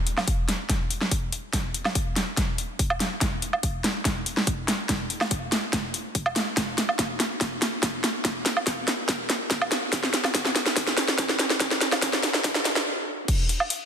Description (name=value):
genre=dubstep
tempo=143 BPM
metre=4/4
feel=half-time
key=none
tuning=none
part: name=dubstep drum kit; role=drums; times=0.1-13.8 s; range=crash cymbal, hi-hat, snare drum, woodblock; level=-24 LUFS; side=equal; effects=none
part: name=electronic kick drum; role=drums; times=0.3-13.4 s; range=none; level=-28 LUFS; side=equal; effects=none
room=moderate lush hall reverb, RT60 2.0 s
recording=dense, heavily limited modern master, high-pass filter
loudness=-23 LUFS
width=side -7 dB against mid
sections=0.0-13.3 A section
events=build-up 0.0-13.3; drum fill 0.0-12.9; filter sweep 0.0-13.3; stop 12.9-13.3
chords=none